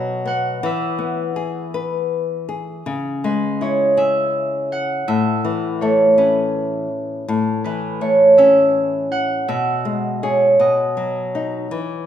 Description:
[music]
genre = children's music, lullaby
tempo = 54 BPM (dotted quarters)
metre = 6/8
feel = straight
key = E major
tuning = A4 = 440 Hz
[part]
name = concert harp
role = melody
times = 0.0-12.1 s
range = B4 to F#5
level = -17 LUFS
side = right 2 dB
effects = none
[part]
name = nylon-string guitar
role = accompaniment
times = 0.0-12.1 s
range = A2 to B4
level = -22 LUFS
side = left 4 dB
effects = none
[sound]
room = moderate recital hall reverb, RT60 1.4 s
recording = minimal, uncompressed stereo recording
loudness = -16 LUFS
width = side -10 dB against mid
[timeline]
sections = 0.0-2.9 A section; 2.9-11.7 B section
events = none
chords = 0.0 B5; 0.6 E; 2.9 C#m; 5.1 Aadd9; 9.5 E/B; 10.6 B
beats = | 0.64 1.75 | 2.87 3.98 | 5.08 6.18 | 7.28 8.38 | 9.49 10.60 | 11.71

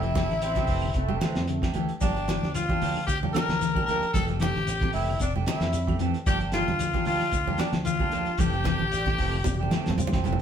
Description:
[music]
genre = afrobeat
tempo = 113 BPM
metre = 4/4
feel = swing 54% on 16ths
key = unclear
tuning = A4 = 439 Hz
[part]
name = growling tenor saxophone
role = melody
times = 0.0-10.0 s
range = D4 to Bb4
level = -30 LUFS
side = left 3 dB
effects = none
[part]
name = bright alto saxophone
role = second line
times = 0.0-10.0 s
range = D4 to Bb4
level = -36 LUFS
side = right 4 dB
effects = none
[part]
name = clean electric guitar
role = arpeggios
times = 0.0-10.4 s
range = C3 to G3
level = -34 LUFS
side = left 8 dB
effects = none
[part]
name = clean electric guitar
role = stabs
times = 0.0-10.4 s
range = E3 to G4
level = -33 LUFS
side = right 5 dB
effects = none
[part]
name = fingered electric bass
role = bass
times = 0.0-10.4 s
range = F1 to F2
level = -30 LUFS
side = equal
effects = none
[part]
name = cloth-damped thuddy drum kit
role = drums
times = 0.0-10.4 s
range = hi-hat, kick drum, snare drum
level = -30 LUFS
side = equal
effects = none
[part]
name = congas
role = percussion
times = 0.2-10.4 s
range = none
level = -32 LUFS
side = right 4 dB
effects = none
[part]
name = bright trombone section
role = second line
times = 0.4-1.9, 8.9-10.4 s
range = F3 to C4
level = -36 LUFS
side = right 1 dB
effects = none
[part]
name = claves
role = percussion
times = 0.4-10.3 s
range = none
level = -48 LUFS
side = right 5 dB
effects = none
[part]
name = shekere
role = percussion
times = 2.0-10.4 s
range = none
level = -38 LUFS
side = left 3 dB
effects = none
[sound]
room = wet studio reverb, RT60 0.8 s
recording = band playing live in one room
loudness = -23 LUFS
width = side -8 dB against mid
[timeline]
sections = 0.0-10.4 A section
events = drum fill 9.5-10.4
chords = 0.0 Fmaj9; 2.0 Gm7; 4.1 Fmaj9; 6.3 Gm7; 8.4 Fmaj9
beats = 0.42 0.95 1.48 | 2.01 2.54 3.08 3.61 | 4.14 4.67 5.20 5.73 | 6.26 6.80 7.33 7.86 | 8.39 8.92 9.45 9.98

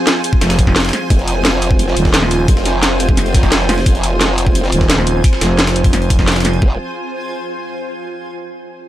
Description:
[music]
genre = dark technical drum and bass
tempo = 174 BPM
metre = 4/4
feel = straight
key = F minor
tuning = A4 = 441 Hz
[part]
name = sweeping resonant pad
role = sustained chords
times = 0.0-6.8 s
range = F3 to C5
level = -22 LUFS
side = equal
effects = wide subtle chorus, sidechain pumping
[part]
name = granular cloud pad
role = texture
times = 0.0-8.0 s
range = F4 to Ab5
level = -23 LUFS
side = right 2 dB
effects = built-in reverb, sidechain pumping
[part]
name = breakbeat sampler-style drum kit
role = drums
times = 0.1-6.6 s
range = hi-hat, snare drum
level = -24 LUFS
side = equal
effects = high-pass filter on hats, high-pass filter on snare, high-pass filter on room
[part]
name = drum and bass drum kit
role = drums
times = 0.1-6.5 s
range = hi-hat, snare drum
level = -16 LUFS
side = equal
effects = none
[part]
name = electronic kick drum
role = drums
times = 0.3-6.7 s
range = none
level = -13 LUFS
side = equal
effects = none
[part]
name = growling FM bass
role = bass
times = 0.4-2.5, 4.7-6.6 s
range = Eb1 to F1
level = -16 LUFS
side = equal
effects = tube saturation
[part]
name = growl bass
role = bass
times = 1.1-6.8 s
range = F1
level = -17 LUFS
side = equal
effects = chorus, tube saturation, sidechain pumping
[sound]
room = little or no reverb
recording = none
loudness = -11 LUFS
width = side -13 dB against mid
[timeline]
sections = 0.0-6.6 A section; 6.6-8.0 B section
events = drop 0.0-6.6; band accent 6.3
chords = 0.0 Fm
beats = 0.07 0.41 0.76 | 1.10 1.45 1.79 2.14 | 2.48 2.83 3.17 3.52 | 3.86 4.21 4.55 4.90 | 5.24 5.59 5.93 6.28 | 6.62 6.97 7.31 7.66

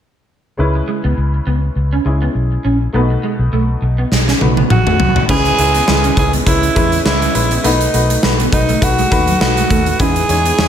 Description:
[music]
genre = 1980s-style pop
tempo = 102 BPM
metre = 4/4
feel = swing 55% on 16ths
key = C# minor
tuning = A4 = 441 Hz
[part]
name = clear grand piano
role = accompaniment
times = 0.6-10.7 s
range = B2 to C#5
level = -20 LUFS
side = left 2 dB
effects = none
[part]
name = vintage muted fingered electric bass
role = bass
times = 0.6-10.7 s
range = A1 to E2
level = -16 LUFS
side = equal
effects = none
[part]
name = electric guitar at the edge of break-up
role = riff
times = 0.8-10.5 s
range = F#3 to C#4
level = -22 LUFS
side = right 3 dB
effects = ensemble chorus, ping-pong delay
[part]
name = big rock drum kit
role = drums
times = 4.1-10.7 s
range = crash cymbal, hi-hat, kick drum, snare drum, toms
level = -15 LUFS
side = equal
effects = gated reverb
[part]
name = raspy alto saxophone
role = melody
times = 4.7-10.7 s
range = D#4 to G#4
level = -17 LUFS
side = right 2 dB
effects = ping-pong delay
[sound]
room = light reverb, small room ambience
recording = none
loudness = -12 LUFS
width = side -9 dB against mid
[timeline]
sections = 0.6-5.3 A section; 5.3-10.7 B section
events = drum fill 4.1-5.3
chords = 0.6 C#m7; 2.9 B7; 5.3 C#m7; 7.6 B7; 10.0 Emaj7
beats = | 0.59 1.17 1.76 2.35 | 2.94 3.53 4.12 4.70 | 5.29 5.88 6.47 7.06 | 7.64 8.23 8.82 9.41 | 10.00 10.59

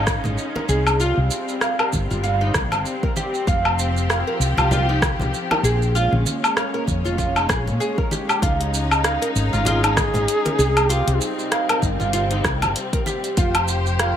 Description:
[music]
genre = organic downtempo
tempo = 97 BPM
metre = 4/4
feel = swing 57% on 16ths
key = F minor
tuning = A4 = 440 Hz
[part]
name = warm studio string section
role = sustained chords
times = 0.0-14.2 s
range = C3 to C5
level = -27 LUFS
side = left 2 dB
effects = sidechain pumping, shimmer reverb
[part]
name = oud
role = arpeggios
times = 0.0-14.2 s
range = Eb4 to F5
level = -24 LUFS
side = right 2 dB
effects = ping-pong delay, shimmer reverb
[part]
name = woody fretless electric bass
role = bass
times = 0.0-14.1 s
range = F1 to Bb2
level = -22 LUFS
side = equal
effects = sidechain pumping
[part]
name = deep house drum kit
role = drums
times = 0.1-14.1 s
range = hi-hat, rim click, shaker, woodblock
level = -22 LUFS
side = left 1 dB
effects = none
[part]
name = electronic kick drum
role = drums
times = 0.1-13.5 s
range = none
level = -24 LUFS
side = equal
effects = none
[part]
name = congas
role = percussion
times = 0.1-13.2 s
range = none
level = -30 LUFS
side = right 1 dB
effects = none
[part]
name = warm duduk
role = melody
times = 9.7-14.2 s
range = Eb4 to Ab4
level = -25 LUFS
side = right 1 dB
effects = ping-pong delay, shimmer reverb
[sound]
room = light reverb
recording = none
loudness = -18 LUFS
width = side -9 dB against mid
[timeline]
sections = 0.0-14.2 A section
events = none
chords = 0.0 Db5; 1.0 C5; 3.5 F5; 5.9 Bbm7; 8.4 Db; 10.9 Cm; 13.4 F5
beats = 0.38 | 1.00 1.62 2.23 2.85 | 3.47 4.09 4.71 5.33 | 5.95 6.57 7.18 7.80 | 8.42 9.04 9.66 10.28 | 10.89 11.51 12.13 12.75 | 13.37 13.99

